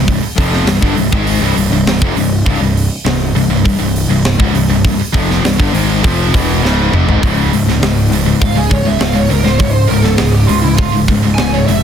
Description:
heavy metal; 101 BPM; 4/4; straight; A4 = 441 Hz
distorted electric guitar; riff; 0.0-11.8 s; C2 to Ab3; -15 LUFS; left 8 dB; distortion
scooped high-gain guitar; riff; 0.0-11.8 s; C2 to Ab3; -17 LUFS; right 10 dB; distortion
fuzz picked electric bass; bass; 0.0-11.8 s; C1 to Db2; -16 LUFS; equal; overdrive
tight metal drum kit; drums; 0.1-11.8 s; hi-hat, kick drum, snare drum, toms; -16 LUFS; right 1 dB
bluesy overdriven lead guitar; melody; 8.4-11.8 s; E4 to Ab5; -18 LUFS; right 4 dB; distortion
light reverb; dense, heavily limited modern master; -10 LUFS; side -8 dB against mid
0.0-7.2 A section; 7.2-11.8 B section
drum fill 6.6-7.2; lead electric guitar solo 7.2-11.8
0.0 C; 7.2 Db5
| 0.08 0.67 1.27 1.86 | 2.46 3.06 3.65 4.25 | 4.84 5.44 6.03 6.63 | 7.22 7.82 8.41 9.01 | 9.60 10.20 10.79 11.39

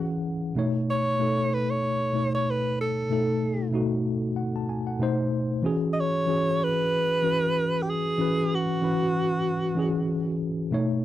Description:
soul; 94 BPM; 4/4; swing 54% on 16ths; E major; A4 = 440 Hz
clear alto saxophone; melody; 0.0-10.4 s; F#4 to D#5; -26 LUFS; right 2 dB
mellow tine electric piano; accompaniment; 0.0-11.0 s; B2 to A5; -25 LUFS; left 1 dB; medium stereo tremolo
little or no reverb; dry, close 1970s-style studio recording; -23 LUFS; side -13 dB against mid
0.0-11.0 A section
0.0 E69; 0.6 B9; 5.0 B7b9; 5.6 E69
| 0.57 1.21 1.84 2.48 | 3.11 3.74 4.38 5.01 | 5.65 6.28 6.92 7.55 | 8.19 8.82 9.46 10.09 | 10.73

